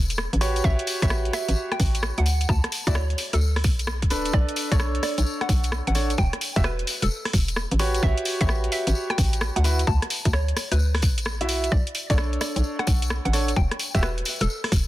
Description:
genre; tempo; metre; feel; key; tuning
UK garage, two-step garage; 130 BPM; 4/4; swing 65% on 16ths; B minor; A4 = 439 Hz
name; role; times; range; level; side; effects
hollow knocking FM bass; bass; 0.0-14.9 s; D1 to D2; -24 LUFS; equal; none
garage drum kit; drums; 0.1-14.8 s; hi-hat, rim click; -29 LUFS; equal; soft clipping on snare
tambourine; percussion; 0.1-14.8 s; none; -34 LUFS; left 4 dB; none
warm grand piano; stabs; 0.4-14.0 s; D4 to E5; -29 LUFS; right 1 dB; tape echo
hollow square pluck; melody; 0.6-14.6 s; A4 to A5; -32 LUFS; right 1 dB; chorus, tape echo
electronic kick drum; drums; 0.6-14.8 s; none; -22 LUFS; equal; none
room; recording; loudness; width
little or no reverb; dense, heavily limited modern master, vinyl crackle; -21 LUFS; side -16 dB against mid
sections
0.0-14.9 A section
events
none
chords
0.4 A13; 2.3 D5; 4.3 Bm9; 6.2 N.C.; 7.8 A13; 9.6 D69; 11.7 Bm9; 13.6 N.C.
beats
0.18 | 0.64 1.10 1.56 2.03 | 2.49 2.95 3.41 3.87 | 4.33 4.80 5.26 5.72 | 6.18 6.64 7.10 7.57 | 8.03 8.49 8.95 9.41 | 9.87 10.33 10.80 11.26 | 11.72 12.18 12.64 13.10 | 13.56 14.03 14.49

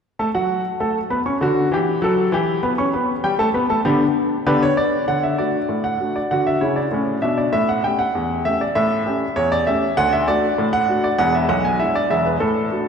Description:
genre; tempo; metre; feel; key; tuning
ragtime piano; 98 BPM; 2/4; straight; D major; A4 = 440 Hz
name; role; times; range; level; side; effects
clear upright piano; solo; 0.2-12.9 s; E1 to C#6; -17 LUFS; equal; none
room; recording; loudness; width
wet church reverb, RT60 3.3 s; recorded in a church or concert hall; -17 LUFS; side -6 dB against mid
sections
0.2-5.1 A section; 5.1-12.9 B section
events
none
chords
0.2 D (rootless); 2.6 G; 5.1 D; 7.5 A7; 10.0 D; 11.2 E7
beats
| 0.19 0.81 | 1.42 2.03 | 2.64 3.25 | 3.85 4.47 | 5.09 5.70 | 6.31 6.92 | 7.53 8.14 | 8.75 9.36 | 9.97 10.58 | 11.19 11.80 | 12.41

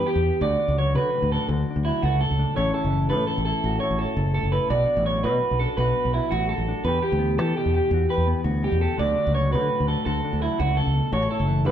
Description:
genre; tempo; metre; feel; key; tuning
highlife; 112 BPM (dotted quarters); 12/8; straight; D major; A4 = 440 Hz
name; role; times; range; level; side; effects
mellow electric guitar; accompaniment; 0.0-11.7 s; F#2 to A4; -29 LUFS; left 5 dB; none
electric guitar through a small old amp; arpeggios; 0.0-11.7 s; E4 to D5; -24 LUFS; right 2 dB; none
fingered electric bass; bass; 0.0-11.7 s; F#1 to E3; -24 LUFS; equal; none
room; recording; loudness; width
wet stone room reverb, RT60 1.3 s; band playing live in one room; -20 LUFS; side -10 dB against mid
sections
0.4-11.7 A section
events
none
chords
0.4 D; 2.6 A; 4.7 Bm; 6.8 Em7; 9.0 D; 11.1 A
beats
| 0.42 0.96 1.49 2.03 | 2.57 3.10 3.64 4.17 | 4.71 5.24 5.78 6.31 | 6.85 7.38 7.92 8.46 | 8.99 9.53 10.06 10.60 | 11.13 11.67

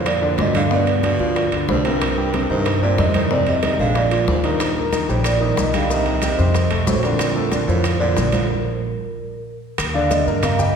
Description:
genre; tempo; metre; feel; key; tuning
Afro-Cuban jazz; 185 BPM; 4/4; straight; Bb major; A4 = 439 Hz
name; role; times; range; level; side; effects
vibraphone with medium mallets; melody; 0.0-10.8 s; Bb4 to F5; -23 LUFS; right 4 dB; none
clear baritone saxophone; second line; 0.0-8.5 s; F2 to D3; -26 LUFS; right 3 dB; none
clear baby grand piano; accompaniment; 0.0-10.8 s; B2 to Bb5; -23 LUFS; left 2 dB; none
upright bass; bass; 0.0-10.7 s; Bb1 to G2; -22 LUFS; equal; none
bongos; percussion; 0.1-10.6 s; none; -30 LUFS; left 5 dB; none
congas; percussion; 0.1-10.8 s; none; -27 LUFS; equal; none
timbales; percussion; 0.1-10.6 s; none; -27 LUFS; right 3 dB; none
maracas; percussion; 4.6-10.8 s; none; -34 LUFS; left 6 dB; none
room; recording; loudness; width
wet concert hall reverb, RT60 1.9 s; recorded in a church or concert hall; -16 LUFS; side -7 dB against mid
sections
0.0-9.8 A section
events
stop 8.5-9.8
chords
0.0 Bb; 0.7 G7; 2.0 Cm7; 3.3 Fm7; 4.0 Bb5; 4.6 Ebmaj7; 5.9 Cm; 6.5 F; 7.2 Bb; 9.8 Ebmaj7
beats
0.06 0.39 | 0.71 1.04 1.36 1.68 | 2.01 2.33 2.66 2.98 | 3.31 3.63 3.95 4.28 | 4.60 4.93 5.25 5.58 | 5.90 6.22 6.55 6.87 | 7.19 7.52 7.84 8.16 | 8.49 8.81 9.13 9.46 | 9.78 10.10 10.43 10.75

